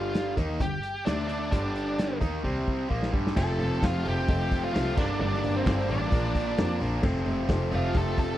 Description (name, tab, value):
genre	classic rock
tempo	131 BPM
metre	4/4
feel	straight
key	unclear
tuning	A4 = 440 Hz
part	octave-fuzz lead guitar	melody	0.0-8.4 s	C4 to A4	-32 LUFS	right 1 dB	distortion
part	distorted electric guitar	riff	0.0-8.4 s	F2 to Eb4	-30 LUFS	equal	overdrive
part	clear double bass	bass	0.0-8.3 s	F1 to F2	-30 LUFS	equal	none
part	raw garage drum kit	drums	0.1-8.3 s	crash cymbal, hi-hat, kick drum, snare drum	-29 LUFS	equal	none
part	clear grand piano	accompaniment	3.4-8.3 s	C4 to Eb5	-37 LUFS	left 4 dB	none
room	little or no reverb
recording	dry, close 1970s-style studio recording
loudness	-25 LUFS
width	side -13 dB against mid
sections	0.0-3.4 A section; 3.4-8.4 B section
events	drum fill 2.4-3.4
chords	0.0 Gm; 1.1 D5; 1.5 Gm; 2.4 C5; 2.9 Gm; 3.4 F; 5.0 Gm; 6.1 Bb; 7.0 F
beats	0.14 0.60 1.06 | 1.52 1.98 2.44 2.90 | 3.36 3.82 4.28 4.74 | 5.20 5.66 6.12 6.57 | 7.03 7.49 7.95